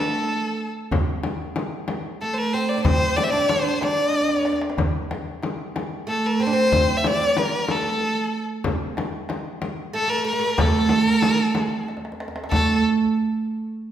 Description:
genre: Persian modal ensemble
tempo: 62 BPM (dotted quarters)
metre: 6/8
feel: straight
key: A dastgah shur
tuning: A4 = 439 Hz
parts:
  - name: clear violin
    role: melody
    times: 0.0-12.8 s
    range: A4 to E5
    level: -22 LUFS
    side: left 1 dB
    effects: none
  - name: oud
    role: second line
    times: 0.0-12.8 s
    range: A3 to D4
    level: -23 LUFS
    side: right 3 dB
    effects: none
  - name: frame drum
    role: percussion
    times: 0.9-12.8 s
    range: none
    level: -26 LUFS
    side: left 3 dB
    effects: none
  - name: tombak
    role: percussion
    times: 0.9-12.8 s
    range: none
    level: -29 LUFS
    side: right 1 dB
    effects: none
room: wet recital hall reverb, RT60 1.5 s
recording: recorded in a church or concert hall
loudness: -20 LUFS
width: side -10 dB against mid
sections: 0.0-12.5 A section; 12.5-13.9 B section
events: drum fill 4.1-4.8, 11.9-12.5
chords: none

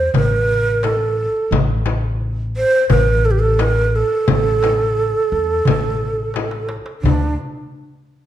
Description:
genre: Arabic maqam ensemble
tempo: 87 BPM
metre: 4/4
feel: straight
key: unclear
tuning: A4 = 440 Hz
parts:
  - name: breathy ney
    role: melody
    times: 0.0-7.3 s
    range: D4 to C5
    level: -18 LUFS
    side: right 3 dB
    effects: none
  - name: upright bass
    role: bass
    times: 0.0-7.4 s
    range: A1 to E2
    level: -20 LUFS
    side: left 1 dB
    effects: none
  - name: darbuka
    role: percussion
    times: 0.1-7.3 s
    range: none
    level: -23 LUFS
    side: right 2 dB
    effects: none
  - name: frame drum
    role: percussion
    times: 0.1-7.4 s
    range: none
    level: -22 LUFS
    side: left 7 dB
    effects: none
room: moderate recital hall reverb, RT60 1.4 s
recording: dark, warm production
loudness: -15 LUFS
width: side -11 dB against mid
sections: 0.0-7.0 A section; 7.0-8.3 B section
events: drum fill 6.3-7.0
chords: none

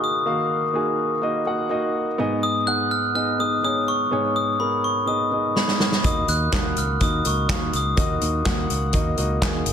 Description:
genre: piano-driven pop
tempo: 124 BPM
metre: 4/4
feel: straight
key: Eb minor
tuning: A4 = 440 Hz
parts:
  - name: glockenspiel with hard plastic mallets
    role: melody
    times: 0.0-8.2 s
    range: Cb6 to Gb6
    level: -23 LUFS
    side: left 2 dB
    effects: none
  - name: warm concert grand piano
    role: accompaniment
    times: 0.0-9.7 s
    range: Ab2 to Gb5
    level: -25 LUFS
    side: right 1 dB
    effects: none
  - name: natural country drum kit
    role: drums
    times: 5.6-9.7 s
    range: handclaps, hi-hat, kick drum, snare drum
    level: -23 LUFS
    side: equal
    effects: none
  - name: modern bright fingered electric bass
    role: bass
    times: 6.0-9.7 s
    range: Gb1 to Eb2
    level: -25 LUFS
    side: equal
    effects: none
room: moderate large studio reverb, RT60 1.4 s, small room reverb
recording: dense, heavily limited modern master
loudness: -20 LUFS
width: side -8 dB against mid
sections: 0.0-9.7 A section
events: drum fill 5.6-6.0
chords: 0.0 Ebm; 2.2 Abm; 6.0 Ebm

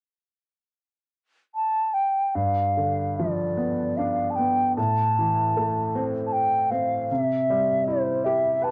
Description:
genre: celtic folk, Celtic slow air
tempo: 76 BPM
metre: 3/4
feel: uneven beats, rubato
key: G mixolydian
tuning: A4 = 439 Hz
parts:
  - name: mellow hollow wooden flute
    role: melody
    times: 1.5-8.7 s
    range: C5 to A5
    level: -25 LUFS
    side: equal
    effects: cassette tape
  - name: warm upright piano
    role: accompaniment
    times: 2.4-8.7 s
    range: G2 to B4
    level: -29 LUFS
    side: equal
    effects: cassette tape
room: light reverb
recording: home recording on cassette, nothing above 10.6 kHz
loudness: -24 LUFS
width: mono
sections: 0.0-2.3 A section; 2.3-8.7 B section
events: none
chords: 0.0 N.C.; 2.3 G7; 4.8 Am; 7.1 C

